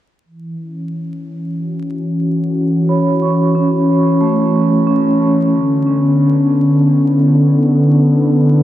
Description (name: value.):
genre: ambient.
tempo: 91 BPM.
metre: 4/4.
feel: swing 59% on 16ths.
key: F# minor.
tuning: A4 = 440 Hz.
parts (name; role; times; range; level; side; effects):
warm analog pad; sustained chords; 0.2-8.6 s; D3 to A4; -14 LUFS; equal; chorus, vintage 12-bit sampler grit.
vibraphone with medium mallets; arpeggios; 2.9-8.6 s; A3 to C#6; -15 LUFS; equal; low-pass filter, dub echo.
room: moderate lush hall reverb, RT60 2.1 s.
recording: dark, warm production, vinyl crackle.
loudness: -11 LUFS.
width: side -13 dB against mid.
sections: 0.3-8.6 A section.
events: filter sweep on analog synth pad 0.3-8.6.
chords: 0.3 F#m7; 5.5 E7sus4.